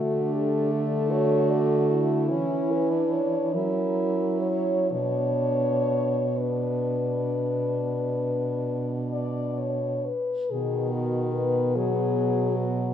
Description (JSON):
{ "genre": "classical, lyrical piece for horn quartet", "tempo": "40-53 BPM (dotted quarters)", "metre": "12/8", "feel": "rubato", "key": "B minor", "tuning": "A4 = 439 Hz", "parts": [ { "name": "mellow French horn", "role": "melody", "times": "0.0-12.9 s", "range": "E4 to D5", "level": "-27 LUFS", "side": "left 4 dB", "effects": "none" }, { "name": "mellow French horn", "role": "second line", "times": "0.0-12.9 s", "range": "B3 to F#4", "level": "-31 LUFS", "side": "right 6 dB", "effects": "none" }, { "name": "clear French horn", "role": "accompaniment", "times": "0.0-12.9 s", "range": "D#3 to E4", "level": "-30 LUFS", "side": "left 1 dB", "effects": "none" }, { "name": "clear French horn", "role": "bass", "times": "0.0-12.9 s", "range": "B2 to F#3", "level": "-29 LUFS", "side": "right 2 dB", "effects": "none" } ], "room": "wet recital hall reverb, RT60 1.5 s", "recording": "recorded in a church or concert hall", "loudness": "-23 LUFS", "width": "side -9 dB against mid", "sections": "0.0-10.5 A section; 10.5-12.9 B section", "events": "none", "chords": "0.0 D; 2.3 C#m7/E; 3.5 F#7; 4.9 Bm; 10.5 B", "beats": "1.10 2.30 3.54 | 4.91 6.38 7.78 9.12 | 10.51 11.76" }